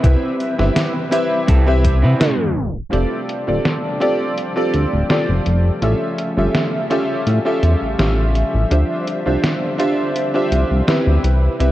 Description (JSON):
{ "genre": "vaporwave", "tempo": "83 BPM", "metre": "4/4", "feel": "straight", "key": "F lydian", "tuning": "A4 = 440 Hz", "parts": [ { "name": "clear electric grand piano", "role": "accompaniment", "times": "0.0-11.7 s", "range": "C4 to E5", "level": "-19 LUFS", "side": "equal", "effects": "lush chorus, tape echo" }, { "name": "muted studio string section", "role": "sustained chords", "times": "0.0-11.7 s", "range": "C3 to E5", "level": "-26 LUFS", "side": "left 1 dB", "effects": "low-pass filter" }, { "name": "electric guitar at the edge of break-up", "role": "riff", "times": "0.0-2.6 s", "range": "C4 to B4", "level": "-27 LUFS", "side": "right 2 dB", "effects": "lush chorus, vintage 12-bit sampler grit, tape echo" }, { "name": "chorused synth bass", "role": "bass", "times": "0.0-11.7 s", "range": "D1 to C3", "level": "-15 LUFS", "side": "equal", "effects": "tube saturation" }, { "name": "detuned 8-bit digital drum machine", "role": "drums", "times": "0.0-11.7 s", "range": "hi-hat, snare drum", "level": "-22 LUFS", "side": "equal", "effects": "low-pass filter on hats, small room ambience, low-pass filter on snare, gated reverb" }, { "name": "electronic kick drum", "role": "drums", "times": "0.0-2.0 s", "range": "none", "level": "-16 LUFS", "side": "equal", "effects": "small room ambience" } ], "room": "light reverb", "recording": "cassette tape, tape stop", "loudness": "-15 LUFS", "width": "side -14 dB against mid", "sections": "0.0-2.9 A section; 2.9-11.7 B section", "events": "tape stop 2.2-2.9; filter sweep on string section 2.9-11.7", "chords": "0.0 Cmaj7; 2.9 F69; 5.8 A7b13; 8.7 Dm11", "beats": "| 0.04 0.76 1.48 2.21 | 2.93 3.65 4.38 5.10 | 5.82 6.54 7.27 7.99 | 8.71 9.44 10.16 10.88 | 11.61" }